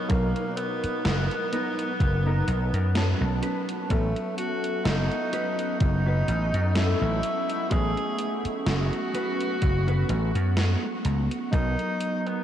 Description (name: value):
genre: vaporwave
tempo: 63 BPM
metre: 4/4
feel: swing 55% on 16ths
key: unclear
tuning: A4 = 440 Hz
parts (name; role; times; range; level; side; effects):
- warm tenor saxophone; melody; 0.0-12.4 s; A3 to G#4; -30 LUFS; equal; tape echo
- FM electric piano with soft pad layer; accompaniment; 0.0-12.4 s; B2 to A5; -32 LUFS; left 1 dB; lush chorus, tape echo
- warbly tape-like pad; sustained chords; 0.0-12.4 s; B3 to D#6; -37 LUFS; right 1 dB; chorus, built-in reverb
- mellow electric guitar; riff; 0.1-11.8 s; B3 to B4; -37 LUFS; right 1 dB; none
- vintage slap bass; bass; 0.1-11.7 s; F#1 to F#2; -24 LUFS; equal; none
- electronic kick drum; drums; 0.1-11.7 s; none; -25 LUFS; equal; studio reverb
- gated 80s digital drum machine; drums; 0.1-12.4 s; hi-hat, snare drum; -34 LUFS; right 1 dB; gated reverb, gated reverb snare, studio reverb
room: wet huge ambient reverb, RT60 7.5 s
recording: dreamy mix soaked in reverb, cassette tape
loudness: -23 LUFS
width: side -10 dB against mid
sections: 0.0-12.4 A section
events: none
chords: 0.0 Bmaj7; 3.4 A69; 11.5 Bmaj7